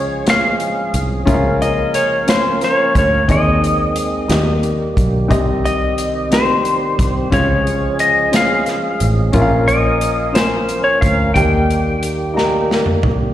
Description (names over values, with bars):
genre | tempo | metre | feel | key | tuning
slow gospel | 60 BPM (dotted quarters) | 6/8 | straight | unclear | A4 = 436 Hz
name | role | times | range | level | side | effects
clean lap steel guitar | melody | 0.0-12.7 s | C5 to G5 | -17 LUFS | left 2 dB | slapback echo
dark upright piano | accompaniment | 0.0-13.3 s | Bb2 to Bb5 | -21 LUFS | left 2 dB | slapback echo
tonewheel organ | sustained chords | 0.0-13.3 s | Eb3 to Bb4 | -22 LUFS | right 2 dB | slow rotary speaker, overdrive, chorus vibrato
fingered electric bass | bass | 0.0-13.3 s | A1 to Eb2 | -19 LUFS | equal | none
natural country drum kit | drums | 0.3-13.2 s | hi-hat, kick drum, snare drum, toms | -19 LUFS | equal | none
room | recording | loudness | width
light reverb | live gig heard through the venue's PA, recital hall reverb | -13 LUFS | side -12 dB against mid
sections
0.0-13.3 A section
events
drum fill 12.4-13.3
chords
0.0 Db; 1.3 Bbm/Db; 3.3 Ab/Eb; 4.3 Eb; 5.3 Cm; 7.3 Db; 9.3 Bbm; 11.4 Eb